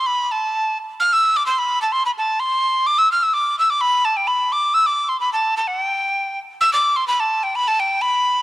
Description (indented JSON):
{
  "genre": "celtic folk",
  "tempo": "128 BPM",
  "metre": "2/4",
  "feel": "swing 53% on 8ths",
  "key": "G mixolydian",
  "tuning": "A4 = 439 Hz",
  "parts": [
    { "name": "breathy bright mid whistle", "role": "solo", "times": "0.0-8.4 s", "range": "G5 to F6", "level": "-16 LUFS", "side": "equal", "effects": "none" }
  ],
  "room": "light reverb, small room reverb",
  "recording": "home recording on cassette",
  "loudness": "-16 LUFS",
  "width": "side -17 dB against mid",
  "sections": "0.0-6.6 A section; 6.6-8.4 A section",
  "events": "none",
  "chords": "none"
}